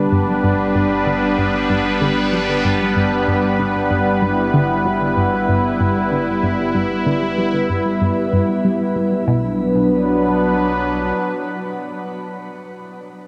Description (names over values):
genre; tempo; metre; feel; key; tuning
ambient, sequencer-driven space music; 95 BPM; 4/4; straight; unclear; A4 = 440 Hz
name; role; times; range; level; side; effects
sweeping resonant pad; sustained chords; 0.0-12.6 s; F#3 to B4; -19 LUFS; equal; chorus, shimmer reverb
analog pluck; riff; 0.0-9.6 s; G2 to G3; -24 LUFS; equal; chorus, phaser, tape echo
fat analog bass; bass; 0.0-11.1 s; G1 to B1; -37 LUFS; equal; none
room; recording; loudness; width
wet huge ambient reverb, RT60 8.5 s; dreamy mix soaked in reverb, cassette tape; -18 LUFS; mono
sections
0.0-9.3 A section; 9.3-11.8 B section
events
fade-out on analog synth bass 0.0-9.3; filter sweep on synth arpeggio sound 0.0-9.3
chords
0.0 G; 9.3 Bm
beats
0.43 1.06 | 1.70 2.33 2.96 3.59 | 4.22 4.85 5.49 6.12 | 6.75 7.38 8.01 8.64 | 9.28 9.91 10.54 11.17